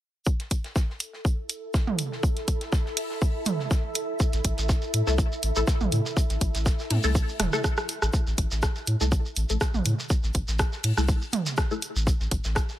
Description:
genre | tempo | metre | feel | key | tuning
minimal techno | 122 BPM | 4/4 | swing 54% on 16ths | unclear | A4 = 440 Hz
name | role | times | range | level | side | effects
electronic kick drum | drums | 0.3-12.7 s | none | -25 LUFS | equal | none
modern studio drum kit | drums | 0.3-12.8 s | hi-hat, shaker, snare drum | -40 LUFS | left 1 dB | high-pass filter on hats, high-pass filter on snare, high-pass filter on perc, high-pass filter on room
ethereal airy pad | texture | 1.7-8.1 s | E4 to E5 | -37 LUFS | equal | ensemble chorus, built-in reverb, sidechain pumping
swarming drone | texture | 1.1-8.1 s | A4 | -38 LUFS | right 3 dB | built-in reverb, sidechain pumping
garage drum kit | drums | 0.4-12.7 s | hi-hat, rim click | -29 LUFS | right 1 dB | none
electronic toms | percussion | 1.9-11.4 s | none | -30 LUFS | right 4 dB | tape echo
shekere | percussion | 4.2-12.8 s | none | -35 LUFS | right 1 dB | none
saturated sub bass | bass | 4.3-12.6 s | E1 to A2 | -26 LUFS | equal | sidechain pumping
filtered dub chord stab | stabs | 5.1-11.8 s | A3 to A4 | -32 LUFS | left 3 dB | phaser, ensemble chorus, vintage 12-bit sampler grit, tape echo
room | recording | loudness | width
small room reverb | none | -24 LUFS | side -13 dB against mid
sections
0.3-8.1 A section; 8.1-12.8 B section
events
fade-in on ambient pad 0.3-8.1; drum fill 7.4-8.1; filter sweep on synth stab 8.1-12.8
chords
0.3 A5

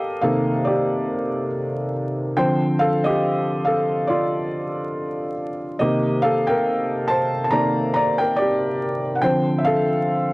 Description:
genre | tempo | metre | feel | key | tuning
hip hop | 70 BPM | 4/4 | swing 58% on 16ths | C dorian | A4 = 440 Hz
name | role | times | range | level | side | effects
felt-muted upright piano | solo | 0.0-10.3 s | C3 to Bb5 | -19 LUFS | equal | cassette tape, low-pass filter
room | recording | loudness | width
light reverb | dark, warm production, vinyl crackle | -19 LUFS | side -21 dB against mid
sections
0.0-10.3 A section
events
felt piano solo 0.0-10.3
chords
0.0 Cm9; 2.4 Dm7; 5.8 Cm9; 9.2 Dm7

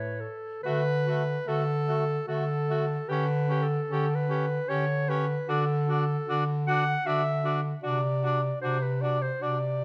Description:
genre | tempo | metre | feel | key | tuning
classical, lyrical piece for single-reed quartet | 76 BPM | 3/4 | rubato | D major | A4 = 440 Hz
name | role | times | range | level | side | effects
mellow clarinet | melody | 0.0-9.8 s | A4 to F#5 | -33 LUFS | equal | none
warm alto saxophone | second line | 0.0-9.6 s | F#4 to C#5 | -40 LUFS | equal | none
clear tenor saxophone | accompaniment | 0.0-9.6 s | A3 to D4 | -36 LUFS | equal | none
mellow bass clarinet | bass | 0.0-9.8 s | A2 to D3 | -31 LUFS | equal | none
room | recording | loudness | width
light reverb | close, detailed microphones | -28 LUFS | mono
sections
0.6-9.8 A section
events
none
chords
0.0 A; 0.6 D; 3.1 A9; 5.5 D; 7.8 D7/C

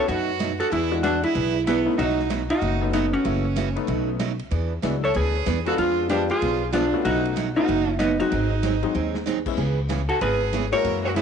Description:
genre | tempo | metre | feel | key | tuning
country, western swing | 190 BPM | 4/4 | swing 63% on 8ths | B mixolydian | A4 = 441 Hz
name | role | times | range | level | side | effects
vintage hollow-body jazz guitar | melody | 0.0-11.2 s | B3 to C#5 | -24 LUFS | left 1 dB | tape echo
clear fiddle | second line | 0.0-11.2 s | B3 to A#4 | -30 LUFS | right 12 dB | none
clear upright piano | accompaniment | 0.0-11.1 s | F#3 to F#4 | -29 LUFS | left 13 dB | none
picked steel-string acoustic guitar | accompaniment | 0.1-11.2 s | B2 to G#4 | -29 LUFS | right 11 dB | none
upright bass | bass | 0.1-11.2 s | F#1 to F#2 | -27 LUFS | left 1 dB | none
swinging big-band drum kit | drums | 0.1-11.2 s | crash cymbal, hi-hat, kick drum, ride cymbal, snare drum | -35 LUFS | left 3 dB | none
room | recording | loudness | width
light reverb | 1960s-style stereo with parts hard left and right, nothing above 10.3 kHz | -20 LUFS | side -7 dB against mid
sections
0.0-11.2 A section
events
drum fill 8.9-9.3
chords
0.0 B7; 0.7 E9; 2.0 B9; 3.2 F#m7; 3.9 B9; 4.5 E9; 5.8 Fdim7; 7.0 B9; 8.3 G#7; 9.6 C#m7

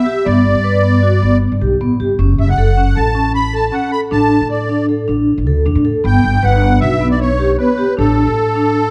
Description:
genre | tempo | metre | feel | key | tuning
contemporary instrumental, chamber music in an uneven meter | 156 BPM | 5/4 | straight | G lydian | A4 = 440 Hz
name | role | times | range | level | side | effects
musette accordion | melody | 0.0-8.9 s | A4 to B5 | -20 LUFS | equal | none
celesta | texture | 0.0-0.6, 4.1-8.1 s | D4 to C#5 | -27 LUFS | equal | none
vibraphone with medium mallets | arpeggios | 0.1-8.9 s | B3 to B4 | -18 LUFS | equal | none
upright bass | bass | 0.3-8.9 s | F#1 to A2 | -18 LUFS | equal | none
room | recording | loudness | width
moderate recital hall reverb, RT60 1.4 s | dark, warm production | -14 LUFS | mono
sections
0.0-8.9 A section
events
none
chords
0.0 G; 2.2 F#m; 4.1 Asus4; 6.0 G; 8.0 Asus4

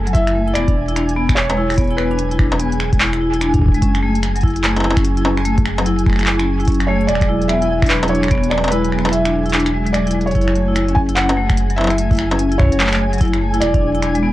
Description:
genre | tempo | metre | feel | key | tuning
IDM | 147 BPM | 4/4 | swing 62% on 16ths | F# minor | A4 = 440 Hz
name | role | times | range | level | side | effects
felt-muted upright piano | melody | 0.0-2.8, 6.9-14.2 s | A4 to G#5 | -22 LUFS | right 1 dB | vintage 12-bit sampler grit, cassette tape, analog delay
glassy FM pad | sustained chords | 0.0-14.3 s | F#3 to A4 | -26 LUFS | right 1 dB | ensemble chorus, built-in reverb, vintage 12-bit sampler grit, cassette tape
warm sub bass | bass | 0.0-14.3 s | E1 to F#1 | -21 LUFS | equal | none
flickering grainy texture | texture | 0.0-14.3 s | G#5 | -28 LUFS | right 2 dB | built-in reverb, sidechain pumping, cassette tape
vibraphone with medium mallets | arpeggios | 0.1-14.3 s | F#3 to E4 | -20 LUFS | left 2 dB | cassette tape, tape echo
electronic kick drum | drums | 0.1-13.8 s | none | -16 LUFS | equal | overdrive, cassette tape
industrial drum kit | drums | 0.1-14.2 s | finger snaps, handclaps, hi-hat, struck metal | -21 LUFS | equal | cassette tape
room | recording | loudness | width
light reverb | home recording on cassette | -14 LUFS | side -15 dB against mid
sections
0.0-14.3 A section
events
kick drops out 8.7-10.4; drum fill 10.1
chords
0.0 F#m7; 0.6 E; 3.8 F#m7; 7.1 E7; 10.4 F#m7; 13.6 E7

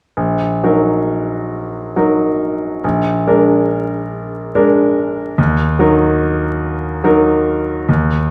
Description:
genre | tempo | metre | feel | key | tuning
classical | 44-49 BPM (dotted quarters) | 6/8 | rubato | Eb minor | A4 = 438 Hz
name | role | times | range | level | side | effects
bright grand piano | accompaniment | 0.2-8.3 s | Bb1 to Bb4 | -15 LUFS | equal | none
room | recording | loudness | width
wet recital hall reverb, RT60 1.3 s | dark, warm production, vinyl crackle | -15 LUFS | mono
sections
0.2-8.3 A section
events
none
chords
0.2 Ebm/Bb; 2.8 Bb7; 5.4 Ebm

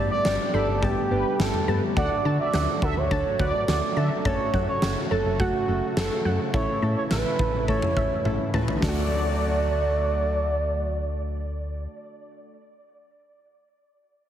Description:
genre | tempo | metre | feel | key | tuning
synth-pop | 105 BPM | 4/4 | straight | D major | A4 = 439 Hz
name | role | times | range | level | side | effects
expressive synth lead | melody | 0.0-11.9 s | F#4 to D5 | -27 LUFS | right 3 dB | chorus, tape echo
warm analog keys | accompaniment | 0.0-12.6 s | G3 to B4 | -32 LUFS | left 2 dB | chorus
brassy analog pad | sustained chords | 0.0-11.9 s | C#3 to G4 | -33 LUFS | right 1 dB | chorus
analog pluck | arpeggios | 0.0-12.6 s | D3 to B5 | -35 LUFS | left 2 dB | chorus, tape echo
solid FM bass | bass | 0.0-11.9 s | F#1 to D3 | -27 LUFS | equal | none
mellow synth brass | second line | 0.1-4.1, 8.8-10.5 s | B4 to F#5 | -33 LUFS | left 1 dB | chorus, phaser, tape echo
huge arena drum kit | drums | 0.2-9.0 s | hi-hat, kick drum, snare drum, toms | -28 LUFS | equal | none
room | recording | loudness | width
moderate lush hall reverb, RT60 2.0 s | heavily compressed radio sound, multiband compression | -22 LUFS | side -10 dB against mid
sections
0.0-8.8 A section; 8.8-11.1 B section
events
drum fill 8.3-8.8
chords
0.0 Gadd9; 2.0 D; 4.3 F#m; 6.5 A; 8.8 D

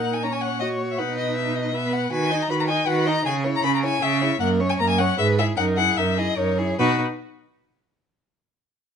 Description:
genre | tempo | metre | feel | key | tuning
quick classical-period movement for string quartet | 144-160 BPM | 3/4 | straight | B major | A4 = 440 Hz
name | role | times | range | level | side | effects
rich violin | melody | 0.0-7.0 s | B4 to B5 | -24 LUFS | left 7 dB | none
rich violin | second line | 0.0-7.0 s | F#4 to D#5 | -27 LUFS | left 1 dB | none
warm viola | accompaniment | 0.0-7.0 s | A#3 to G#4 | -28 LUFS | right 3 dB | none
clear cello | bass | 0.0-7.0 s | F#2 to D#3 | -25 LUFS | right 4 dB | none
room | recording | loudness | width
light reverb | nothing above 11.0 kHz | -20 LUFS | side -7 dB against mid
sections
0.0-6.8 A section; 6.8-8.0 B section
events
none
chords
0.0 F#/A#; 1.0 B; 2.1 B/D#; 3.3 C#m; 4.4 F#; 5.2 E/G#; 5.6 F#13; 6.8 B

